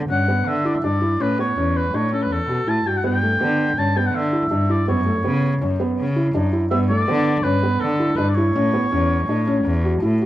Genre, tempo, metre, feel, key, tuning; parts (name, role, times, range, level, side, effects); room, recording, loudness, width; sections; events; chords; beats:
contemporary instrumental, chamber music in an uneven meter; 163 BPM; 5/4; straight; A4 = 443 Hz
warm oboe; melody; 0.1-10.0 s; A4 to A5; -23 LUFS; equal
felt-muted upright piano; arpeggios; 0.1-10.3 s; A3 to F#4; -22 LUFS; equal
rich cello; bass; 0.1-10.3 s; E2 to D3; -21 LUFS; equal
light reverb; dark, warm production; -17 LUFS; side -14 dB against mid
0.0-10.3 A section
0.0 G; 1.2 A; 3.0 G; 4.9 F#7(no3); 6.7 G; 8.5 A
0.10 0.47 0.83 | 1.20 1.57 1.94 2.30 2.67 | 3.04 3.41 3.77 4.14 4.51 | 4.88 5.24 5.61 5.98 6.34 | 6.71 7.08 7.45 7.82 8.18 | 8.55 8.92 9.28 9.65 10.02